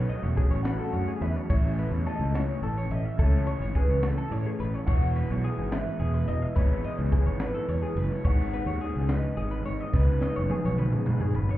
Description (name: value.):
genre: math rock and midwest emo.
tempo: 71 BPM (dotted quarters).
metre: 6/8.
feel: straight.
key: E major.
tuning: A4 = 439 Hz.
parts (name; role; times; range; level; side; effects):
electric guitar through a small old amp; melody; 0.0-11.3 s; A4 to F#5; -36 LUFS; equal; analog chorus, tape echo.
twelve-string electric guitar; arpeggios; 0.0-11.6 s; G#4 to E5; -37 LUFS; left 3 dB; tremolo, tape echo.
crunchy overdriven guitar; riff; 0.0-11.6 s; G#2 to F#4; -34 LUFS; right 1 dB; spring reverb.
fuzz fingered electric bass; bass; 0.0-11.5 s; E1 to A2; -27 LUFS; equal; overdrive.
crisp fusion drum kit; drums; 0.1-11.6 s; crash cymbal, kick drum, ride cymbal, snare drum, toms; -28 LUFS; equal; none.
room: light reverb.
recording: heard muffled through a wall, club reverb, EQ, nothing above 10.5 kHz.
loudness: -24 LUFS.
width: side -15 dB against mid.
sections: 0.0-11.6 A section.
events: drum fill 9.9-11.6.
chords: 0.0 F#m11; 1.5 A; 4.9 E69; 8.2 G#m7.